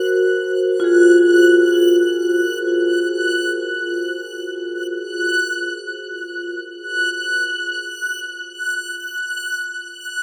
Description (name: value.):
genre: ambient.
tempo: free time.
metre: none.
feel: none.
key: Gb lydian.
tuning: A4 = 440 Hz.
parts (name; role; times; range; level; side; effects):
vibraphone with medium hard mallets; arpeggios; 0.0-7.7 s; F4 to C5; -19 LUFS; equal; delay.
backwards swelling texture; texture; 0.0-10.2 s; Gb6; -24 LUFS; equal; built-in reverb.
room: wet huge ambient reverb, RT60 8.3 s.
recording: none.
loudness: -18 LUFS.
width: mono.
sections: 0.0-10.2 A section.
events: fade-in on synth texture 0.0-10.2.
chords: 0.0 Gbmaj7; 7.6 N.C..